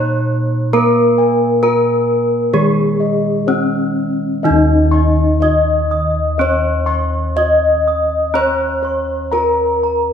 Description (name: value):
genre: Javanese gamelan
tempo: 62-70 BPM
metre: 4/4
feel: straight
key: unclear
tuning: A4 = 440 Hz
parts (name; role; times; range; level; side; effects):
- gamelan-type bronze metallophone; melody; 0.0-10.1 s; Db4-45c to Eb5; -16 LUFS; left 1 dB; none
- gamelan-type bronze metallophone; accompaniment; 0.0-10.1 s; Eb3 to Eb4; -21 LUFS; right 5 dB; none
- gamelan-type bossed gongs; arpeggios; 0.0-9.9 s; Db5-45c to Db6-45c; -23 LUFS; left 7 dB; none
- gamelan-type bossed gongs; bass; 0.0-10.1 s; Eb2 to Db5-45c; -19 LUFS; equal; none
- gamelan-type bronze metallophone; arpeggios; 4.5-10.1 s; Eb5 to Eb6; -24 LUFS; right 2 dB; none
room: wet recital hall reverb, RT60 1.6 s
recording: recorded in a church or concert hall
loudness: -13 LUFS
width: side -8 dB against mid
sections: 0.0-4.4 A section; 4.4-10.1 B section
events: none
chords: none